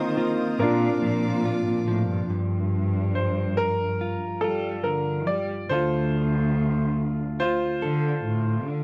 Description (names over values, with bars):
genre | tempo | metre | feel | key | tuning
acoustic folk-pop ballad | 71 BPM | 4/4 | straight | unclear | A4 = 440 Hz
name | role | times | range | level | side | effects
bright concert grand piano | melody | 0.0-8.8 s | D4 to D5 | -30 LUFS | equal | none
direct-recorded clean electric guitar | accompaniment | 0.0-8.8 s | G2 to Bb4 | -31 LUFS | equal | none
warm chamber string section | sustained chords | 0.0-2.3 s | Bb4 to Eb6 | -42 LUFS | equal | none
concert harp | arpeggios | 0.0-2.7 s | C4 to F4 | -34 LUFS | equal | none
warm cello | bass | 0.0-8.8 s | D2 to G3 | -29 LUFS | equal | none
room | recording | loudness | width
little or no reverb | dry, close 1970s-style studio recording | -25 LUFS | mono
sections
0.0-2.3 A section; 2.3-8.8 B section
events
none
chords
0.0 Ebsus2; 0.6 Bb; 2.3 Gm7; 5.7 Dm7